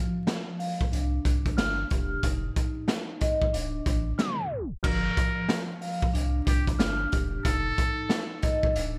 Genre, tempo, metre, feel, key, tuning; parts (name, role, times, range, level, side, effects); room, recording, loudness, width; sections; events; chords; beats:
hip hop, boom-bap hip-hop; 92 BPM; 4/4; swing 62% on 16ths; G minor; A4 = 442 Hz
vibraphone with soft mallets; accompaniment; 0.0-9.0 s; F3 to F6; -34 LUFS; equal; high-pass filter, low-pass filter
raw garage drum kit; drums; 0.3-8.9 s; crash cymbal, hi-hat, kick drum, snare drum; -30 LUFS; equal
warm sub bass; bass; 0.9-9.0 s; D1 to C2; -33 LUFS; equal
trumpet with metal mute; melody; 4.8-8.3 s; G4 to Bb4; -35 LUFS; equal; high-pass filter, low-pass filter, digital delay
light reverb; bright 1980s-style digital production, vinyl crackle, tape stop; -28 LUFS; mono
0.0-4.8 A section; 4.8-9.0 B section
tape stop 4.2-4.8
0.0 N.C.; 0.9 Csus2; 2.2 Ebsus2/F; 3.5 D; 4.8 Gm7; 6.1 Csus2; 7.5 F7
0.28 0.93 1.58 | 2.23 2.88 3.54 4.19 | 4.84 5.49 6.14 6.80 | 7.45 8.10 8.75